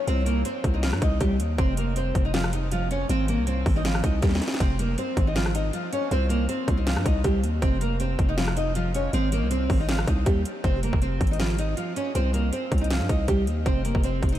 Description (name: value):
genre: hip hop, trap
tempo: 159 BPM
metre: 4/4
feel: half-time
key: F minor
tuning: A4 = 441 Hz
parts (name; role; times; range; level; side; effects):
- nylon-string guitar; melody; 0.0-14.4 s; F3 to Eb5; -27 LUFS; right 1 dB; wide subtle chorus, diffuse ambient delay
- growling 808-style bass; bass; 0.1-14.4 s; F1 to G2; -25 LUFS; equal; none
- trap drum kit; drums; 0.1-14.4 s; hi-hat, kick drum, rim click, snare drum; -27 LUFS; equal; overdrive
room: light reverb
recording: none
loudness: -22 LUFS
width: side -12 dB against mid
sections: 0.0-10.6 A section; 10.6-14.4 B section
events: drum fill 4.2-4.6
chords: 0.1 Cm; 1.6 F5; 3.1 Ab; 4.6 Fm; 6.1 Cm; 7.6 F5; 9.1 Ab; 10.6 Fm; 12.2 Cm; 13.7 F5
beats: | 0.07 0.45 0.83 1.21 | 1.58 1.96 2.34 2.72 | 3.09 3.47 3.85 4.23 | 4.60 4.98 5.36 5.74 | 6.11 6.49 6.87 7.25 | 7.62 8.00 8.38 8.75 | 9.13 9.51 9.89 10.26 | 10.64 11.02 11.40 11.77 | 12.15 12.53 12.90 13.28 | 13.66 14.04